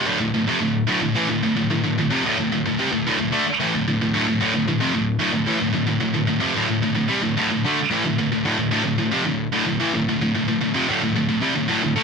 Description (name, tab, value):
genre	metal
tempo	111 BPM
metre	4/4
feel	straight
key	D minor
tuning	A4 = 443 Hz
part	high-gain distorted guitar	solo	0.0-12.0 s	D2 to A3	-19 LUFS	equal	distortion
room	moderate studio reverb, RT60 0.9 s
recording	band playing live in one room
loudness	-19 LUFS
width	side -5 dB against mid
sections	0.1-12.0 A section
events	none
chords	0.1 D5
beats	| 0.07 0.61 1.16 1.70 | 2.24 2.78 3.32 3.87 | 4.41 4.95 5.49 6.03 | 6.57 7.11 7.65 8.19 | 8.73 9.27 9.81 10.35 | 10.89 11.43 11.97